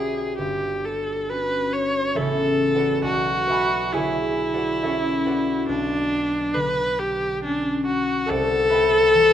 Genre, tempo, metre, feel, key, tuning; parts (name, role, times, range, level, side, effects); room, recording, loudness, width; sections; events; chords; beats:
classical, impressionist duo for viola and harp; 68 BPM; 3/4; rubato; B minor; A4 = 440 Hz
rich viola; melody; 0.0-9.3 s; D4 to C#5; -21 LUFS; left 1 dB
concert harp; accompaniment; 0.0-9.3 s; G1 to B5; -25 LUFS; equal
moderate recital hall reverb, RT60 1.7 s; close, detailed microphones; -20 LUFS; side -10 dB against mid
0.0-9.3 A section
0.4 Gmaj7#11; 2.2 Aadd9; 3.0 Bm9; 5.7 Bmadd9; 8.3 Cmaj7
| 0.40 1.29 2.17 | 3.05 3.94 4.83 | 5.69 6.55 7.43 | 8.30 9.14